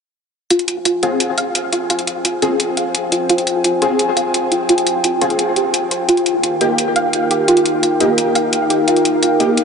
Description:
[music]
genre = dark technical drum and bass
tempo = 172 BPM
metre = 4/4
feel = straight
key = F minor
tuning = A4 = 444 Hz
[part]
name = dark analog pad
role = sustained chords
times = 0.5-9.6 s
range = Eb4 to Ab5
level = -19 LUFS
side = equal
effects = lush chorus
[part]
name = soft round pluck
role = arpeggios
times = 0.5-9.5 s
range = F4 to F5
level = -18 LUFS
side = right 1 dB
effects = ensemble chorus, ping-pong delay
[part]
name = electronic hi-hat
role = drums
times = 0.5-9.6 s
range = none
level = -19 LUFS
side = left 1 dB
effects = none
[part]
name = orchestra-hit-like synth stab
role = stabs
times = 1.0-9.5 s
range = Bb3 to Ab4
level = -20 LUFS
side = left 1 dB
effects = built-in reverb, phaser, ping-pong delay
[sound]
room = wet huge ambient reverb, RT60 7.7 s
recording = dreamy mix soaked in reverb, nothing above 10.5 kHz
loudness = -14 LUFS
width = side -6 dB against mid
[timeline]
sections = 0.5-9.6 A section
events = none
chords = 0.5 Fm; 6.1 Eb

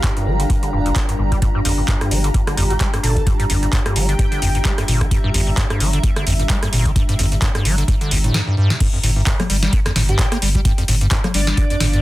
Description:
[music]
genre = acid house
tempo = 130 BPM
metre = 4/4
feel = swing 56% on 16ths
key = unclear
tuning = A4 = 440 Hz
[part]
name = dark analog pad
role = sustained chords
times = 0.0-8.3 s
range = G3 to Bb4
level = -29 LUFS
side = left 1 dB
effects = chorus, sidechain pumping
[part]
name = acid bass, square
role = riff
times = 0.0-12.0 s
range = G1 to Bb3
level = -21 LUFS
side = equal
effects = overdrive, wide subtle chorus, cassette tape, tape echo
[part]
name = booming analog drum machine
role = drums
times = 0.0-12.0 s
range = congas, crash cymbal, handclaps, hi-hat, rim click, snare drum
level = -22 LUFS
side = equal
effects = none
[part]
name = electronic kick drum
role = drums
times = 0.0-11.7 s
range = none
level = -19 LUFS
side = equal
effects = overdrive
[part]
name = granular cloud pad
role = texture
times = 0.0-12.0 s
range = D4 to Bb5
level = -29 LUFS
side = right 1 dB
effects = built-in reverb, sidechain pumping
[part]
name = saturated sub bass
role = bass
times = 0.3-12.0 s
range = F1 to G1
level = -19 LUFS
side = equal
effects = sidechain pumping
[part]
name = airy dreamy lead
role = melody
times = 2.7-4.7, 10.1-12.0 s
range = D4 to A4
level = -27 LUFS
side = equal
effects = chorus, cassette tape, analog delay
[sound]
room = light reverb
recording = dense, heavily limited modern master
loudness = -15 LUFS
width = side -16 dB against mid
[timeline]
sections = 0.0-8.8 A section; 8.8-12.0 B section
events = filter sweep on acid bass 0.0-8.8; drum fill 8.3-8.8; drop 8.8-12.0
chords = 0.0 Gm7; 8.8 G7(no3)

